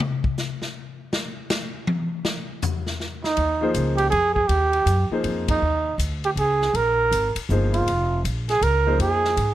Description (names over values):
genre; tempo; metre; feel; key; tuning
modal jazz; 160 BPM; 3/4; swing 64% on 8ths; Eb mixolydian; A4 = 439 Hz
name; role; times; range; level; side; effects
swinging big-band drum kit; drums; 0.0-9.5 s; hi-hat, kick drum, ride cymbal, snare drum, toms; -28 LUFS; left 2 dB; none
breathy trumpet; melody; 3.2-9.5 s; Eb4 to Bb4; -21 LUFS; right 3 dB; none
upright bass; bass; 3.4-9.5 s; F1 to Ab2; -24 LUFS; equal; none
warm baby grand piano; accompaniment; 3.6-9.4 s; F3 to C5; -25 LUFS; left 2 dB; none
room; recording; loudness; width
light reverb; close, detailed microphones; -20 LUFS; side -13 dB against mid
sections
0.0-3.4 A section; 3.4-9.5 B section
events
drum solo 0.0-3.4; band accent 5.4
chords
0.0 N.C.; 3.4 Eb7sus4; 7.9 Bbm7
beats
| 0.00 0.38 0.75 | 1.12 1.50 1.87 | 2.25 2.62 3.00 | 3.37 3.75 4.12 | 4.50 4.87 5.25 | 5.62 6.00 6.37 | 6.75 7.12 7.50 | 7.87 8.25 8.62 | 9.00 9.37